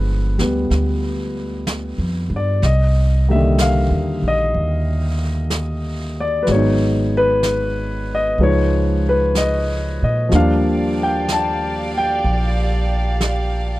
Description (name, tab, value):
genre	jazz ballad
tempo	62 BPM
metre	4/4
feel	swing 69% on 8ths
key	unclear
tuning	A4 = 440 Hz
part	warm concert grand piano	accompaniment	0.0-13.8 s	D3 to A5	-19 LUFS	left 1 dB	none
part	upright bass	bass	0.0-13.8 s	G1 to Bb2	-19 LUFS	equal	none
part	vintage brush drum kit	drums	0.4-13.8 s	brushed snare drum, hi-hat, snare drum	-29 LUFS	right 1 dB	none
part	warm studio string section	sustained chords	10.3-13.8 s	G4 to F5	-26 LUFS	right 2 dB	none
room	little or no reverb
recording	dry, close 1970s-style studio recording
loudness	-16 LUFS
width	side -17 dB against mid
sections	0.0-13.8 A section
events	none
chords	0.0 G7b9; 2.6 Cm7; 6.5 Abm7; 8.4 Db9; 10.3 Ebmaj9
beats	0.71 1.67 | 2.62 3.58 4.54 5.50 | 6.46 7.42 8.38 9.35 | 10.31 11.28 12.24 13.21